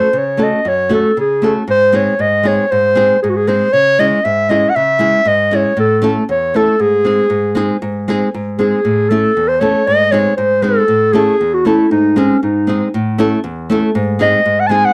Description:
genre	balkan folk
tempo	117 BPM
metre	2/4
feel	straight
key	G# phrygian dominant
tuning	A4 = 436 Hz
part	dark clarinet	melody	0.0-14.9 s	C#4 to A5	-15 LUFS	equal	slapback echo
part	nylon-string guitar	accompaniment	0.0-14.9 s	E2 to A4	-18 LUFS	equal	none
room	light reverb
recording	dry, close 1970s-style studio recording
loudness	-14 LUFS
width	mono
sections	0.0-7.8 A section; 7.8-14.9 B section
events	clarinet solo 7.8-14.9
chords	0.0 F#m; 1.7 G#; 3.7 C#m; 5.8 A; 6.8 G#; 8.8 A; 9.9 G#; 10.9 A; 11.9 G#; 12.9 A; 13.9 G#

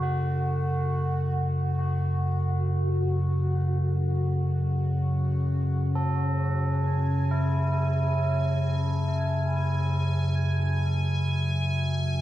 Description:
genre	dark ambient drone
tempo	free time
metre	none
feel	none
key	F# minor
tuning	A4 = 439 Hz
part	tubular bells	arpeggios	0.0-12.2 s	E4 to A4	-34 LUFS	right 2 dB	analog delay
part	deep rumbling drone	drone	0.0-12.2 s	F#2 to C#3	-24 LUFS	equal	built-in reverb, wide subtle chorus
part	bubbling stepped-filter texture	texture	0.0-12.2 s	F#4 to G#5	-36 LUFS	left 1 dB	chorus, built-in reverb
room	moderate lush hall reverb, RT60 2.7 s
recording	dreamy mix soaked in reverb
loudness	-24 LUFS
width	side -14 dB against mid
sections	0.0-12.2 A section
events	fade-in on synth texture 0.0-12.2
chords	0.0 F#5; 6.4 F#m9

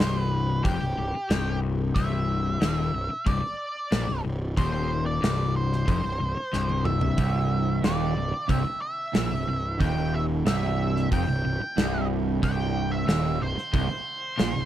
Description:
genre	classic rock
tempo	92 BPM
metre	4/4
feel	straight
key	unclear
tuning	A4 = 440 Hz
part	octave-fuzz lead guitar	melody	0.0-14.7 s	G4 to G5	-31 LUFS	right 1 dB	wah, distortion
part	overdriven electric guitar	riff	0.0-14.7 s	C2 to Bb2	-28 LUFS	left 5 dB	none
part	fuzz picked electric bass	bass	0.0-14.7 s	C1 to Bb1	-30 LUFS	equal	overdrive
part	gated 80s drum kit	drums	0.0-14.5 s	hi-hat, kick drum, snare drum, toms	-27 LUFS	equal	none
part	overdriven semi-hollow guitar	riff	7.2-14.7 s	C2 to Bb2	-30 LUFS	right 10 dB	spring reverb
room	little or no reverb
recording	none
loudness	-23 LUFS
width	side -12 dB against mid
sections	0.0-14.7 A section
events	drum fill 6.5-7.2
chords	0.0 C

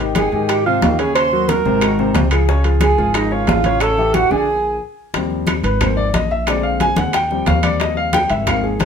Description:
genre	Afro-Cuban jazz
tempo	180 BPM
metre	4/4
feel	straight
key	Ab major, Eb major from 5.1 s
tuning	A4 = 440 Hz
part	warm concert grand piano	accompaniment	0.0-8.8 s	C3 to Ab5	-19 LUFS	left 3 dB	none
part	upright bass	bass	0.0-8.8 s	Ab1 to Ab2	-20 LUFS	equal	none
part	congas	percussion	0.0-8.8 s	none	-24 LUFS	left 2 dB	none
part	timbales	percussion	0.1-8.8 s	none	-24 LUFS	right 4 dB	none
part	mellow alto saxophone	melody	0.2-4.8 s	Eb4 to C5	-18 LUFS	right 4 dB	none
part	breathy silver concert flute	second line	0.2-4.8 s	Eb5 to C6	-23 LUFS	right 5 dB	none
part	bongos	percussion	0.2-8.8 s	none	-26 LUFS	left 5 dB	none
part	claves	percussion	0.2-8.6 s	none	-31 LUFS	left 1 dB	none
room	moderate studio reverb, RT60 0.9 s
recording	minimal, uncompressed stereo recording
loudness	-14 LUFS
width	side -7 dB against mid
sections	0.0-5.1 A section; 5.1-8.8 B section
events	stop 4.5-5.1; grand piano solo 5.1-8.8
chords	0.0 Abmaj7; 1.2 Ebm7; 1.8 Ab7; 2.5 Db; 3.8 A7; 4.5 Absus2/Bb; 5.1 Eb69; 5.8 Ab69; 6.5 Bb7; 7.1 Eb69

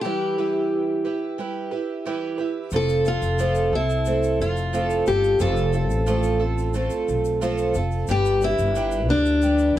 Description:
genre	acoustic pop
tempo	90 BPM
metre	4/4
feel	straight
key	unclear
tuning	A4 = 440 Hz
part	picked steel-string acoustic guitar	melody	0.0-9.8 s	D4 to A4	-23 LUFS	left 2 dB	none
part	picked twelve-string acoustic guitar	accompaniment	0.0-9.8 s	E3 to B4	-24 LUFS	right 4 dB	none
part	upright bass	bass	2.7-9.8 s	F1 to D2	-24 LUFS	equal	none
part	egg shaker	percussion	2.7-9.8 s	none	-45 LUFS	left 8 dB	none
room	little or no reverb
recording	worn, warbling old tape, cassette tape, warbly pitch drift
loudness	-20 LUFS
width	side -13 dB against mid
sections	0.0-2.7 A section; 2.7-9.8 B section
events	none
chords	0.0 Em; 2.7 F; 8.1 G

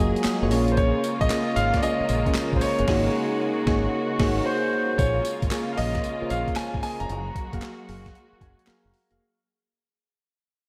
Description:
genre	R&B, new jack swing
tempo	114 BPM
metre	4/4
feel	swing 66% on 16ths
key	Bb minor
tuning	A4 = 440 Hz
part	warm concert grand piano	melody	0.0-8.6 s	C5 to Bb5	-30 LUFS	equal	diffuse ambient delay
part	soft electric-piano-like synth keys	accompaniment	0.0-9.2 s	Bb3 to Bb5	-29 LUFS	equal	chorus
part	warm studio string section	sustained chords	0.0-9.2 s	Db3 to Ab4	-34 LUFS	equal	none
part	deep dub fingered electric bass	bass	0.0-9.2 s	F1 to Bb1	-30 LUFS	equal	none
part	boom bap sampler-style drum kit	drums	0.2-9.2 s	crash cymbal, handclaps, hi-hat, kick drum, snare drum, tambourine	-31 LUFS	equal	none
part	group handclap	percussion	0.2-8.8 s	none	-47 LUFS	equal	none
room	wet lush hall reverb, RT60 1.8 s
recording	dreamy mix soaked in reverb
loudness	-24 LUFS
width	mono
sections	0.0-5.0 A section; 5.0-9.2 B section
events	band accent 2.9-5.0; silent gap 4.5-5.0; fade-out 5.0-9.2; synth keys fill 7.6-9.2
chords	0.0 Gbmaj9; 0.5 Bbm7; 2.9 Ab9sus4; 5.0 Bbm7; 7.1 Gbmaj9

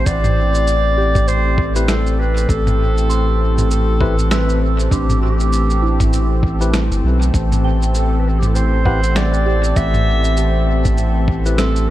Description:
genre	ambient dub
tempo	99 BPM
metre	4/4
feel	swing 59% on 16ths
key	A minor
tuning	A4 = 438 Hz
part	mellow clarinet	melody	0.0-11.9 s	G4 to E5	-22 LUFS	equal	dub echo
part	warm analog pad	sustained chords	0.0-11.9 s	E3 to A4	-23 LUFS	left 1 dB	wide subtle chorus
part	soft synth bell	arpeggios	0.0-11.9 s	C4 to E6	-28 LUFS	right 5 dB	chorus, tape echo
part	soft dub sub bass	bass	0.0-11.9 s	G1 to B1	-16 LUFS	equal	none
part	electronic kick drum	drums	0.1-11.4 s	none	-19 LUFS	equal	none
part	lo-fi sampler-style drum kit	drums	0.1-11.9 s	shaker, snare drum, toms	-24 LUFS	right 1 dB	dub echo
part	tine electric piano	stabs	1.8-11.6 s	C4 to B4	-29 LUFS	left 4 dB	none
room	light reverb, digital ambience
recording	none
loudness	-14 LUFS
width	side -14 dB against mid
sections	0.0-11.9 A section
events	none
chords	0.0 Am7

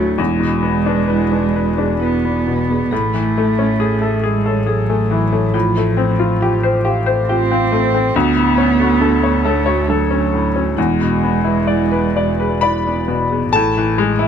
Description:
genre	neoclassical piano and strings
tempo	67 BPM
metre	3/4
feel	rubato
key	unclear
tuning	A4 = 438 Hz
part	dark cello	second line	0.0-13.0 s	F3 to C4	-19 LUFS	right 6 dB	none
part	bright upright piano	accompaniment	0.0-14.3 s	D2 to B5	-17 LUFS	left 6 dB	none
part	marimba with medium mallets	arpeggios	0.0-14.3 s	D4 to G#5	-23 LUFS	right 6 dB	tape echo
part	clear double bass	bass	0.0-14.3 s	E1 to D2	-21 LUFS	equal	none
room	little or no reverb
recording	close, detailed microphones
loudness	-14 LUFS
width	side -8 dB against mid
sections	0.0-13.5 A section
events	none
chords	0.2 E7; 2.9 Amaj7; 5.5 Fadd9/A; 8.1 Dmaj7; 10.8 E7; 13.5 Amaj7(no3)

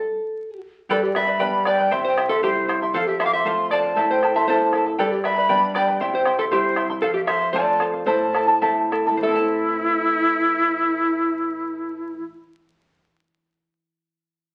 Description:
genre	andean folk, Andean ensemble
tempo	95-118 BPM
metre	2/4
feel	straight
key	A minor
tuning	A4 = 439 Hz
part	vintage hollow-body jazz guitar	melody	0.0-12.2 s	G4 to F5	-26 LUFS	equal	none
part	breathy bright large quena	second line	0.9-12.2 s	E4 to D6	-25 LUFS	equal	none
part	charango	accompaniment	0.9-12.9 s	E4 to C6	-26 LUFS	equal	none
part	nylon-string guitar	accompaniment	0.9-12.4 s	F2 to F4	-32 LUFS	equal	none
part	bombo	percussion	0.9-9.5 s	none	-34 LUFS	equal	none
room	wet club reverb, RT60 0.8 s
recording	very old 78 rpm record, vinyl crackle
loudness	-21 LUFS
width	mono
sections	0.9-9.2 A section; 9.2-11.8 B section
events	stop 0.0-0.9; slowing down 7.0-9.2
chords	0.0 N.C.; 0.9 G; 1.9 C; 2.9 F; 4.0 Am; 5.0 G; 6.0 C; 7.0 F; 8.1 Am

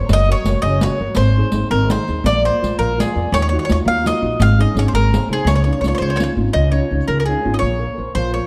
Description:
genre	italian folk, Italian serenade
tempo	112 BPM (dotted quarters)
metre	6/8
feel	straight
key	Db major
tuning	A4 = 442 Hz
part	bowl-back mandolin	melody	0.0-8.5 s	Ab4 to F5	-23 LUFS	equal	none
part	nylon-string guitar	accompaniment	0.0-8.5 s	Db3 to D5	-25 LUFS	equal	none
part	upright bass	bass	0.0-8.4 s	Gb1 to F2	-20 LUFS	equal	none
part	riq	percussion	0.1-6.4 s	none	-26 LUFS	equal	none
room	moderate recital hall reverb, RT60 1.4 s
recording	dark, warm production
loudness	-17 LUFS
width	mono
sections	0.0-6.5 A section; 6.5-8.5 A section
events	none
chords	0.1 Gb; 1.2 Ab; 2.3 Bb; 3.3 Ebmadd9; 4.4 Absus4; 4.9 Ab; 5.5 Dbadd9; 7.6 Bbmadd9

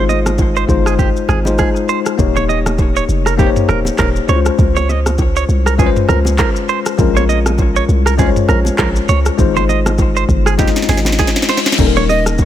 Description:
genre	afrobeats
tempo	100 BPM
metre	4/4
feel	swing 58% on 16ths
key	Eb mixolydian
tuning	A4 = 440 Hz
part	bell-like tine electric piano	accompaniment	0.0-12.4 s	G3 to Eb5	-18 LUFS	moving between left 11 dB and left 3 dB	auto-pan
part	direct-recorded clean electric guitar	riff	0.0-12.2 s	G4 to Eb5	-20 LUFS	right 8 dB	ping-pong delay
part	warm 808-style bass	bass	0.0-12.4 s	Eb1 to Db2	-16 LUFS	equal	none
part	afro-pop drum kit	drums	0.1-12.4 s	crash cymbal, handclaps, hi-hat, kick drum, rim click, shaker, snare drum, toms	-16 LUFS	equal	none
part	bongos and congas	percussion	0.1-12.4 s	none	-24 LUFS	right 2 dB	none
part	reverse cymbal	sound effects	11.0-11.8 s	none	-24 LUFS	left 5 dB	none
part	breathy mellow jazz flute	melody	12.1-12.2 s	Eb5	-17 LUFS	right 1 dB	none
room	digital ambience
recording	none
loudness	-11 LUFS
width	side -11 dB against mid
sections	0.0-2.2 A section; 2.2-11.8 B section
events	drum fill 10.6-11.8; reverse cymbal 11.0-11.8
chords	0.0 Ab6; 2.2 Eb7; 4.3 Dbmaj7; 7.0 Bbm7; 9.4 Ab6; 11.8 Eb7

